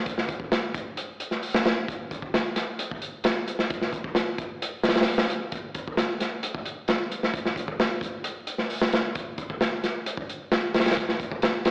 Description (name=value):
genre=breakbeat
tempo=132 BPM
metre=4/4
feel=straight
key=none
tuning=none
part: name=crunchy breakbeat drum kit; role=drums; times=0.1-11.7 s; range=hi-hat, kick drum, snare drum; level=-27 LUFS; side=equal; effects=none
room=wet lush hall reverb, RT60 1.8 s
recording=played on a big sound system in a bare room, stone room reverb, vinyl crackle, AM radio sound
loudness=-27 LUFS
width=mono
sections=0.0-11.7 A section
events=none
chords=none